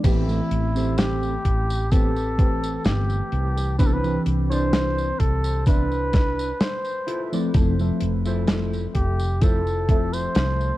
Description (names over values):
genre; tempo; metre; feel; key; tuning
vaporwave; 64 BPM; 4/4; straight; A minor; A4 = 440 Hz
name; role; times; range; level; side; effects
breathy flugelhorn; melody; 0.0-10.8 s; E4 to C5; -28 LUFS; equal; vintage 12-bit sampler grit, tape echo
mellow FM electric piano; accompaniment; 0.0-10.8 s; E3 to E5; -28 LUFS; left 1 dB; phaser, wide subtle chorus, tape echo
mellow electric guitar; riff; 0.0-10.3 s; C4 to D5; -30 LUFS; right 2 dB; analog chorus, tape echo
woody fretless electric bass; bass; 0.0-10.7 s; F1 to C2; -24 LUFS; equal; none
electronic kick drum; drums; 0.0-10.1 s; none; -19 LUFS; equal; overdrive
modern studio drum kit; drums; 0.0-10.8 s; crash cymbal, hi-hat, snare drum, tambourine; -27 LUFS; equal; none
room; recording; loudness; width
little or no reverb; dark, warm production, cassette tape; -20 LUFS; side -16 dB against mid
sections
0.0-10.8 A section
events
none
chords
0.0 Am9; 3.8 Cmaj9; 7.1 Fmaj7